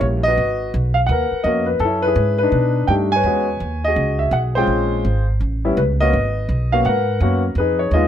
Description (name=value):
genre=jazz piano trio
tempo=167 BPM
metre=4/4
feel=swing 64% on 8ths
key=unclear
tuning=A4 = 440 Hz
part: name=warm concert grand piano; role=melody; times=0.0-8.1 s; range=G3 to Ab5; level=-18 LUFS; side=left 1 dB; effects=none
part: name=upright bass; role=bass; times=0.0-8.1 s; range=Ab1 to B2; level=-20 LUFS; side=right 1 dB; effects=none
room=light reverb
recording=none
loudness=-16 LUFS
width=side -10 dB against mid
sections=0.0-8.1 A section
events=none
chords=0.4 Abm9; 1.8 Gb9sus4; 2.5 B7alt; 3.3 E69; 4.7 Bbm9; 5.4 Aadd9; 6.1 Abm11; 7.6 Fm7b5